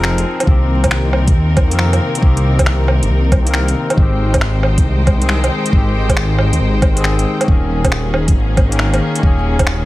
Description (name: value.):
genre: future garage.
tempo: 137 BPM.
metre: 4/4.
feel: swing 67% on 16ths.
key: unclear.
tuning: A4 = 440 Hz.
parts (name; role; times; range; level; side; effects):
barky tine electric piano; accompaniment; 0.0-9.9 s; Eb3 to Bb4; -20 LUFS; left 3 dB; sidechain pumping, tape echo.
clear symphonic string section; sustained chords; 0.0-9.9 s; C3 to G5; -23 LUFS; left 1 dB; sidechain pumping.
swelling detuned saw bass; bass; 0.0-9.9 s; Eb1 to F2; -15 LUFS; equal; none.
garage drum kit; drums; 0.0-9.8 s; finger snaps, hi-hat, woodblock; -19 LUFS; right 1 dB; none.
electronic kick drum; drums; 0.5-9.7 s; none; -13 LUFS; equal; none.
room: little or no reverb.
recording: vinyl crackle.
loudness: -12 LUFS.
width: side -17 dB against mid.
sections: 0.0-9.9 A section.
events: none.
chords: 0.5 Cm7; 4.0 Abmaj7; 7.5 Eb7sus4.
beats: 0.03 | 0.47 0.91 1.35 1.78 | 2.22 2.66 3.10 3.54 | 3.98 4.41 4.85 5.29 | 5.73 6.17 6.60 7.04 | 7.48 7.92 8.35 8.79 | 9.23 9.67.